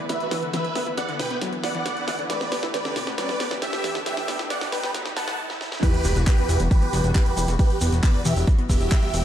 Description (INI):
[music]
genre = uplifting trance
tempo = 136 BPM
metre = 4/4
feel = straight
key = E minor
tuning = A4 = 440 Hz
[part]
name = dark studio string section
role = sustained chords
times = 0.0-9.2 s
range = D3 to B4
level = -34 LUFS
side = left 1 dB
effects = sidechain pumping
[part]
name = wide unison pluck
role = arpeggios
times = 0.0-9.2 s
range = E2 to E4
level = -32 LUFS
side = left 3 dB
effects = sidechain pumping, dub echo
[part]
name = riser and sub drop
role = sound effects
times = 0.0-7.6 s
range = none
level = -34 LUFS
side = right 1 dB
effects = none
[part]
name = big supersaw lead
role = melody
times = 0.1-9.2 s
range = G4 to A5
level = -27 LUFS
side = right 1 dB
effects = phaser, sidechain pumping, low-pass filter, dub echo
[part]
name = house drum kit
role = drums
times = 0.1-9.2 s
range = crash cymbal, handclaps, hi-hat, snare drum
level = -31 LUFS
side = equal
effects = sidechain pumping on hats, high-pass filter on hats, high-pass filter on snare, sidechain pumping on cymbals, high-pass filter on cymbals, high-pass filter on room
[part]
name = electronic kick drum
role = drums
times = 5.8-9.0 s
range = none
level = -19 LUFS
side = equal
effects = none
[part]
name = shekere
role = percussion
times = 5.8-9.2 s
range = none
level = -35 LUFS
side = equal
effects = none
[part]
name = fat analog bass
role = bass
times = 6.0-9.2 s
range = E1 to E2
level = -22 LUFS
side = equal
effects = sidechain pumping
[sound]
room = light reverb, digital ambience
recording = dark, warm production, high-pass filter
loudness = -21 LUFS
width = side -11 dB against mid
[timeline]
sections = 0.0-5.8 A section; 5.8-9.2 B section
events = build-up 0.0-5.8; drum fill 0.0-5.4, 5.5-5.8; riser 0.0-5.8; stop 5.4-5.8; drop 5.8-9.2; impact 5.8-7.6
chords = 0.0 Bm; 2.3 Gadd9; 5.8 Emadd9